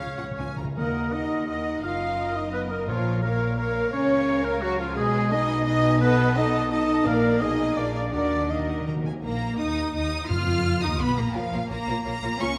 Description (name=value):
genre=classical, dramatic, fast romantic movement for symphony orchestra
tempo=171 BPM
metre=3/4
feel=rubato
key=Eb minor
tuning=A4 = 440 Hz
part: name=warm studio violin section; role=melody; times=0.0-12.6 s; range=Db5 to F6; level=-37 LUFS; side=equal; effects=none
part: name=clear symphonic violin section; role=second line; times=0.0-12.5 s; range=Bb3 to Bb5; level=-38 LUFS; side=equal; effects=none
part: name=mellow hollow silver concert flute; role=second line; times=0.0-8.9 s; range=F4 to F5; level=-34 LUFS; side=equal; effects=none
part: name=warm oboe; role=second line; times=0.0-8.9 s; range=Db4 to F5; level=-33 LUFS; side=equal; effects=none
part: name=rich symphonic viola section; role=accompaniment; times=0.0-12.5 s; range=Bb3 to Eb5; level=-35 LUFS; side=equal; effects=none
part: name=dark French horn section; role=sustained chords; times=0.0-8.9 s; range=Db3 to F4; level=-29 LUFS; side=equal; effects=none
part: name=rich symphonic cello section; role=bass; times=0.0-12.6 s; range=Eb2 to F4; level=-34 LUFS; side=equal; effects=none
part: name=warm symphonic double bass section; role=bass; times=0.0-12.5 s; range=Gb1 to F2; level=-33 LUFS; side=equal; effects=none
part: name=timpani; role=percussion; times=0.0-3.4, 7.1-10.8 s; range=Gb2 to Eb3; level=-35 LUFS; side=equal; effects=none
room=wet concert hall reverb, RT60 2.0 s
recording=none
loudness=-25 LUFS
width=mono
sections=0.8-9.2 A section; 9.2-12.6 A section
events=timpani fill 0.0-0.8, 8.1-9.2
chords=0.0 Db; 0.8 Ebm; 1.8 Ebm/Gb; 2.9 Bbm; 3.9 Bbm/Db; 5.0 Abm/Cb; 6.0 B7; 7.1 Bb; 7.4 Abm/Cb; 7.8 Bb7; 8.1 Ebm; 9.2 Eb5/Bb; 10.3 Eb5; 11.4 Bbm